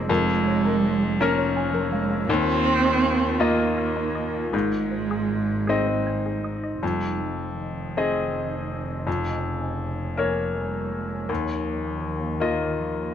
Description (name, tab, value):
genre	neoclassical piano and strings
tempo	54 BPM (dotted quarters)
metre	6/8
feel	rubato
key	F minor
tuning	A4 = 441 Hz
part	muted cello	second line	0.0-13.1 s	Db3 to C4	-27 LUFS	right 5 dB	none
part	bright concert grand piano	accompaniment	0.0-13.1 s	Eb2 to Eb5	-25 LUFS	left 4 dB	none
part	deep dark ambient pad	sustained chords	0.0-13.1 s	Bb3 to Ab5	-35 LUFS	equal	chorus, built-in reverb
part	muted double bass	bass	0.0-13.1 s	F1 to Eb2	-31 LUFS	equal	none
part	resonant blip pluck	arpeggios	0.1-6.7 s	Eb4 to Ab5	-32 LUFS	left 2 dB	phaser, slapback echo
room	light reverb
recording	close, detailed microphones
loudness	-22 LUFS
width	side -9 dB against mid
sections	0.0-6.8 A section; 6.8-13.1 B section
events	none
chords	0.1 Bbm7/F; 2.3 Ebsus2; 4.5 Ab; 6.8 Fm7; 9.1 Bbm7/F; 11.3 Ebsus2